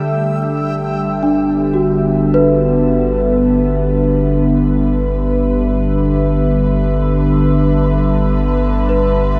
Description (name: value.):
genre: ambient.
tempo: free time.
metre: none.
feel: none.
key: G major.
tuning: A4 = 440 Hz.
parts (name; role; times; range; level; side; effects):
evolving wavetable pad; sustained chords; 0.0-9.4 s; D3 to E5; -17 LUFS; equal; chorus, built-in reverb.
celesta; arpeggios; 0.0-9.4 s; D4 to B5; -20 LUFS; equal; diffuse ambient delay.
warm sub bass; bass; 0.0-9.4 s; G1; -22 LUFS; equal; none.
bowed-like drone; drone; 0.0-9.4 s; G3 to B4; -33 LUFS; equal; built-in reverb.
room: wet huge ambient reverb, RT60 7.9 s.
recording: none.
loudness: -15 LUFS.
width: mono.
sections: 0.0-9.4 A section.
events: none.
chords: 0.0 G6.